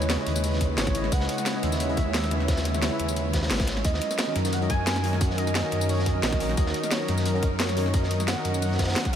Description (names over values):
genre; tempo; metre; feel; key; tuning
liquid drum and bass; 176 BPM; 4/4; swing 53% on 16ths; Eb phrygian; A4 = 440 Hz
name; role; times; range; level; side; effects
warm velvety synth lead; melody; 0.0-9.2 s; Bb4 to Ab5; -32 LUFS; right 1 dB; chorus, tape echo
tine electric piano; accompaniment; 0.0-9.2 s; Db3 to Fb5; -32 LUFS; equal; diffuse ambient delay
airy breathy pad; sustained chords; 0.0-9.2 s; Gb3 to Db5; -31 LUFS; left 1 dB; chorus
swelling detuned saw bass; bass; 0.0-9.2 s; Ab1 to Gb2; -27 LUFS; equal; none
drum and bass drum kit; drums; 0.0-9.2 s; hi-hat, snare drum, tambourine; -30 LUFS; equal; overdrive
crunchy breakbeat drum kit; drums; 0.1-9.2 s; hi-hat, snare drum; -35 LUFS; equal; high-pass filter on hats, high-pass filter on snare, high-pass filter on room
electronic kick drum; drums; 0.6-9.1 s; none; -26 LUFS; equal; overdrive
room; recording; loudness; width
moderate huge ambient reverb, RT60 7.7 s; dreamy mix soaked in reverb; -23 LUFS; side -9 dB against mid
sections
0.0-9.2 A section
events
none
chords
0.0 Dbm7; 3.8 Ebm7